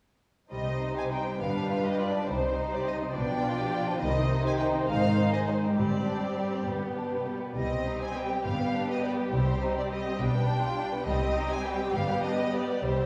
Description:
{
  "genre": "quick classical-period movement for string orchestra",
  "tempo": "68 BPM (dotted quarters)",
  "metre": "6/8",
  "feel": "straight",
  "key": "C minor",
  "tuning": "A4 = 440 Hz",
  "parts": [
    { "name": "rich studio violin section", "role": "melody", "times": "0.5-13.1 s", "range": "C5 to Ab5", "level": "-36 LUFS", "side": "equal", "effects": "none" },
    { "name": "rich studio violin section", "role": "second line", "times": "0.5-13.1 s", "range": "G3 to D5", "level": "-34 LUFS", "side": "equal", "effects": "none" },
    { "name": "rich studio viola section", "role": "accompaniment", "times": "0.5-13.1 s", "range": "Eb3 to Eb4", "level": "-35 LUFS", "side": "equal", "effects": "none" },
    { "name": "warm chamber double bass section", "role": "bass", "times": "0.5-13.1 s", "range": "G1 to C2", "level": "-37 LUFS", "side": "equal", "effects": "none" },
    { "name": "warm studio cello section", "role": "bass", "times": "0.5-13.1 s", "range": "G2 to C3", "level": "-36 LUFS", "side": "equal", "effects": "none" }
  ],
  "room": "wet recital hall reverb, RT60 1.5 s",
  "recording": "heard from further back in the room, small room ambience",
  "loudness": "-29 LUFS",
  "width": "mono",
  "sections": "0.5-13.1 A section",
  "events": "none",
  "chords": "0.5 Cm; 1.4 G7; 2.3 Cm; 3.1 G7/B; 4.0 Cm; 4.9 Ab; 5.8 Gsus4; 6.7 G; 7.6 Cm; 8.5 G7; 9.3 Cm; 10.2 G/B; 11.1 Cm; 11.9 G",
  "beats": "| 0.51 1.40 | 2.27 3.14 | 4.00 4.88 | 5.77 6.66 | 7.56 8.45 | 9.33 10.20 | 11.06 11.94 | 12.83"
}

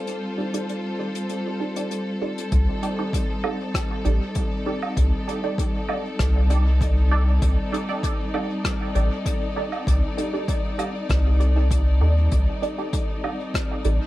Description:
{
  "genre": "ambient dub",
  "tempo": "98 BPM",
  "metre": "4/4",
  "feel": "straight",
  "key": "C dorian",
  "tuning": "A4 = 440 Hz",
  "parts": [
    { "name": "warm studio string section", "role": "sustained chords", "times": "0.0-14.1 s", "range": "G3 to D5", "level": "-29 LUFS", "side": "left 1 dB", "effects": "vintage 12-bit sampler grit" },
    { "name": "filtered dub chord stab", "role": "stabs", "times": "0.0-14.0 s", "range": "Eb4 to D5", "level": "-30 LUFS", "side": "right 3 dB", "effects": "phaser, ensemble chorus, dub echo" },
    { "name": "soft brush drum kit", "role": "drums", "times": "0.1-14.0 s", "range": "hi-hat, rim click, woodblock", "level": "-32 LUFS", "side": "equal", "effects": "dub echo" },
    { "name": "soft dub sub bass", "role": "bass", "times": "2.5-14.0 s", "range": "A1 to Eb2", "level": "-18 LUFS", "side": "equal", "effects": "tube saturation" },
    { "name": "electronic kick drum", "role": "drums", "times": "2.5-13.7 s", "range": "none", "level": "-27 LUFS", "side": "equal", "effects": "overdrive" }
  ],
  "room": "light reverb, small room reverb",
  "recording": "echo-heavy mix",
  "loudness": "-21 LUFS",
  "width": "side -16 dB against mid",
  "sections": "0.0-2.5 A section; 2.5-14.1 B section",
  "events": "none",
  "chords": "0.0 Cm69",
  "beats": "| 0.07 0.69 1.30 1.91 | 2.52 3.13 3.75 4.36 | 4.97 5.58 6.20 6.81 | 7.42 8.03 8.64 9.26 | 9.87 10.48 11.09 11.71 | 12.32 12.93 13.54"
}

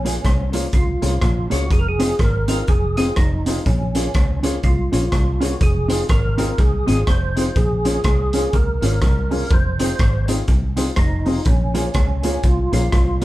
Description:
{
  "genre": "ska",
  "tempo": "123 BPM",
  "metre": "4/4",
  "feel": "swing 60% on 8ths",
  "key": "Bb minor",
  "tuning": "A4 = 440 Hz",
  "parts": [
    { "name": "percussive tonewheel organ", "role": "melody", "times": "0.0-13.2 s", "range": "Db4 to C5", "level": "-25 LUFS", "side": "right 1 dB", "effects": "chorus vibrato, slow rotary speaker" },
    { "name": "mellow electric guitar", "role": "accompaniment", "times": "0.0-13.2 s", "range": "Bb3 to Db5", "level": "-24 LUFS", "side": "right 2 dB", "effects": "none" },
    { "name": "warm upright piano", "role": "stabs", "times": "0.0-13.2 s", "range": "Bb3 to Ab4", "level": "-28 LUFS", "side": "left 5 dB", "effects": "none" },
    { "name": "fingered electric bass", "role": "bass", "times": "0.0-13.2 s", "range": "F1 to Db2", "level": "-21 LUFS", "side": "equal", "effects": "none" },
    { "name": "raw garage drum kit", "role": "drums", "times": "0.1-13.2 s", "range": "hi-hat, kick drum, rim click", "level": "-19 LUFS", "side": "equal", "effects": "none" }
  ],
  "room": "light reverb",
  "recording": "band playing live in one room",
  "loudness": "-16 LUFS",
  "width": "side -16 dB against mid",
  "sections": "0.0-13.2 A section",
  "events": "none",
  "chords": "0.0 Bbm7; 1.7 Fm7; 3.7 Bbm7; 5.6 Fm7; 7.6 Bbm7; 9.5 Fm7; 11.5 Bbm7",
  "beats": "0.24 0.73 1.22 | 1.71 2.19 2.68 3.17 | 3.66 4.14 4.63 5.12 | 5.61 6.09 6.58 7.07 | 7.56 8.04 8.53 9.02 | 9.51 10.00 10.48 10.97 | 11.46 11.95 12.44 12.92"
}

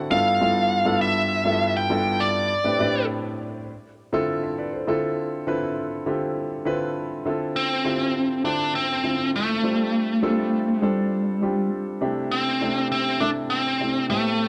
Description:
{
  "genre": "pop",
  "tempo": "101 BPM",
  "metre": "4/4",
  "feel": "straight",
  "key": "D dorian",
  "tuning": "A4 = 442 Hz",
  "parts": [
    { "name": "warm grand piano", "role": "accompaniment", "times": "0.0-14.5 s", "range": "G2 to E5", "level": "-27 LUFS", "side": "equal", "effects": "subtle chorus" },
    { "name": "nasal lead guitar with a parked wah", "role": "melody", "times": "0.1-3.1, 7.6-14.5 s", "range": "A3 to G5", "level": "-24 LUFS", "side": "equal", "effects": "overdrive" }
  ],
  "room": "light reverb, studio ambience",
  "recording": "none",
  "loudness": "-24 LUFS",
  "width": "mono",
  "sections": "0.0-4.9 A section; 4.9-7.3 B section; 7.3-14.5 C section",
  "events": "none",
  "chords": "0.1 G13; 2.5 Am11; 3.7 Dm9; 9.6 G9sus4; 12.0 C6",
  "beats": "| 0.12 0.71 1.31 1.90 | 2.50 3.09 3.69 4.28 | 4.88 5.47 6.07 6.66 | 7.26 7.85 8.45 9.04 | 9.64 10.23 10.83 11.42 | 12.02 12.62 13.21 13.81 | 14.40"
}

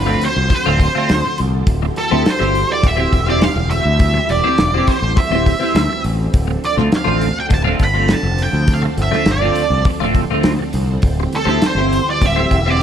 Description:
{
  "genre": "psychedelic rock",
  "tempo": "102 BPM",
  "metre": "4/4",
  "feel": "straight",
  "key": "D minor",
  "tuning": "A4 = 440 Hz",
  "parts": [
    { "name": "octave-fuzz lead guitar", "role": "melody", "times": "0.0-12.8 s", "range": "A4 to B5", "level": "-19 LUFS", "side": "right 2 dB", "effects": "wah, distortion, slapback echo" },
    { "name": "string machine, violins", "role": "sustained chords", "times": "0.0-12.8 s", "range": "E3 to A4", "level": "-26 LUFS", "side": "right 2 dB", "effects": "ensemble chorus" },
    { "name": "growling fingered electric bass", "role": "bass", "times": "0.0-12.8 s", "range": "D1 to D2", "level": "-18 LUFS", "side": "equal", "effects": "overdrive" },
    { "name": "organ-like drone", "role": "drone", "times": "0.0-12.8 s", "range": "D2", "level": "-27 LUFS", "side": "equal", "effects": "ensemble chorus, built-in reverb" },
    { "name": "twelve-string electric guitar", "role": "riff", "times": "0.1-12.8 s", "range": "D3 to C5", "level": "-19 LUFS", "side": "equal", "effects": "rotary speaker, double-tracked left and right" },
    { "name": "cloth-damped thuddy drum kit", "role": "drums", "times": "0.2-12.7 s", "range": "hi-hat, kick drum, snare drum", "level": "-17 LUFS", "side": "equal", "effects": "none" }
  ],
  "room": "studio ambience",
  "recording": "none",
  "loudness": "-13 LUFS",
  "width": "side -9 dB against mid",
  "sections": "0.0-12.8 A section",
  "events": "none",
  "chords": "0.0 Dm7; 1.7 C/D; 6.3 Dm7; 11.0 C/D",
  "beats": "0.51 1.09 | 1.67 2.25 2.83 3.42 | 4.00 4.58 5.17 5.75 | 6.34 6.92 7.51 8.10 | 8.68 9.27 9.86 10.45 | 11.04 11.63 12.22 12.81"
}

